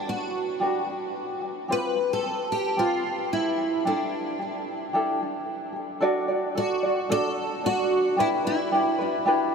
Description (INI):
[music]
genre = pop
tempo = 111 BPM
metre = 4/4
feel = swing 55% on 16ths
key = D major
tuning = A4 = 440 Hz
[part]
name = picked steel-string acoustic guitar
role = melody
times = 0.0-9.2 s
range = D4 to B4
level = -27 LUFS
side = right 1 dB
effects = analog chorus, tape echo
[part]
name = tenor ukulele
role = accompaniment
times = 0.0-9.5 s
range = C4 to D5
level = -26 LUFS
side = equal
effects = none
[sound]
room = wet huge ambient reverb, RT60 8.1 s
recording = dreamy mix soaked in reverb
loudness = -23 LUFS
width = side -5 dB against mid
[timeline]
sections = 0.0-6.0 A section; 6.0-9.5 B section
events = none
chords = 0.0 Gmaj7/D; 1.7 Fsus2; 3.9 A7sus4; 6.0 D; 8.2 Em7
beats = 0.07 0.61 1.15 | 1.69 2.23 2.77 3.32 | 3.86 4.40 4.94 5.48 | 6.02 6.56 7.11 7.64 | 8.19 8.73 9.27